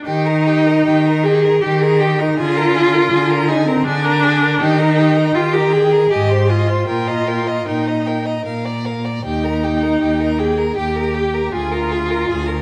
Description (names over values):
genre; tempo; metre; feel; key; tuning
classical, slow romantic movement for string quartet; 74-82 BPM; 3/4; rubato; Eb major; A4 = 439 Hz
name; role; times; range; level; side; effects
rich viola; accompaniment; 0.0-12.6 s; C4 to Ab4; -18 LUFS; equal; none
rich violin; melody; 0.1-12.6 s; F5 to C6; -30 LUFS; equal; none
rich violin; second line; 0.1-12.6 s; G4 to Eb5; -27 LUFS; equal; none
clear cello; bass; 0.1-12.6 s; D2 to Eb3; -22 LUFS; equal; none
room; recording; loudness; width
moderate recital hall reverb, RT60 1.6 s; none; -16 LUFS; mono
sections
0.1-12.6 A section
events
none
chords
0.1 Eb; 2.4 Bb7/D; 4.6 Eb; 6.1 Ab; 6.9 Eb/Bb; 8.5 Bb; 9.2 Eb; 11.5 Bb7/D